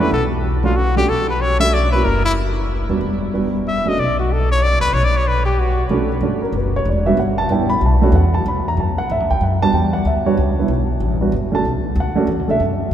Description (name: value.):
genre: jazz, small-group swing and bop.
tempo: 188 BPM.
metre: 3/4.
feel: swing 62% on 8ths.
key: B minor.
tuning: A4 = 441 Hz.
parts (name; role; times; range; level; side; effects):
clear trumpet; melody; 0.0-5.8 s; E4 to E5; -20 LUFS; left 2 dB; none.
dark baby grand piano; accompaniment; 0.0-12.6 s; G3 to B5; -19 LUFS; right 2 dB; none.
upright bass; bass; 0.0-12.9 s; E1 to G2; -19 LUFS; equal; none.
room: wet cathedral reverb, RT60 6.3 s.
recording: recorded in a church or concert hall.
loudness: -15 LUFS.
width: side -10 dB against mid.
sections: 0.0-5.9 A section; 5.9-12.9 B section.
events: none.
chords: 0.1 Bm7; 2.1 F#(#5, no3); 3.0 Em7; 4.0 Bm; 5.9 Bm7; 6.9 Em7; 7.8 Bm7; 9.7 Em7; 11.6 Bm7.